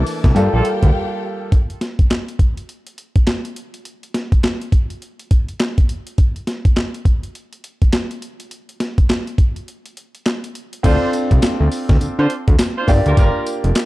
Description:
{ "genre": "R&B, new jack swing", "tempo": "103 BPM", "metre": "4/4", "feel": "swing 61% on 16ths", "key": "unclear", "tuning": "A4 = 438 Hz", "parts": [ { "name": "bright grand piano", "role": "accompaniment", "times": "0.0-1.5, 10.8-13.9 s", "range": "E3 to D5", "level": "-21 LUFS", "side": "equal", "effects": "none" }, { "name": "warm studio string section", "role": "sustained chords", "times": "0.0-1.5 s", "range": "Bb3 to D6", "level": "-28 LUFS", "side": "left 3 dB", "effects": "none" }, { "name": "fat analog bass", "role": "bass", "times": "0.0-0.9, 10.8-13.7 s", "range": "F1 to D3", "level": "-16 LUFS", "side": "equal", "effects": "none" }, { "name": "breakbeat sampler-style drum kit", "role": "drums", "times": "0.1-13.9 s", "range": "crash cymbal, handclaps, hi-hat, kick drum, snare drum, tambourine", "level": "-16 LUFS", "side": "equal", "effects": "none" }, { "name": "mellow horn section", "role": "stabs", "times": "0.5-0.7, 10.8-13.4 s", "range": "Bb3 to C5", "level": "-26 LUFS", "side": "right 2 dB", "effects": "ping-pong delay" } ], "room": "studio reverb", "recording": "dark, warm production", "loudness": "-15 LUFS", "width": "side -18 dB against mid", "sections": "0.0-1.5 A section; 1.5-10.8 B section; 10.8-13.9 A section", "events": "break 0.9-1.5, 9.7-10.8", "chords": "0.4 Gm9; 1.5 N.C.; 10.8 Dm7; 12.9 Gm7" }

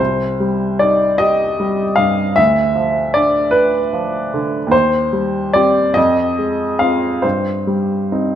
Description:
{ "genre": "classical, romantic nocturne for solo piano", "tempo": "46-52 BPM (dotted quarters)", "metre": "12/8", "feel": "rubato", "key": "C minor", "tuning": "A4 = 441 Hz", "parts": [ { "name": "clear baby grand piano", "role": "solo", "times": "0.0-8.4 s", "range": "C2 to F5", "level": "-13 LUFS", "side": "equal", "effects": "none" } ], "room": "moderate recital hall reverb, RT60 1.9 s", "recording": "dark, warm production", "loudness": "-13 LUFS", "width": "side -10 dB against mid", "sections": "0.0-8.4 A section", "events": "none", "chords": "0.0 Cm; 2.4 Bdim/D; 4.7 Cm/Eb; 6.0 Fm7; 7.2 Cm/G" }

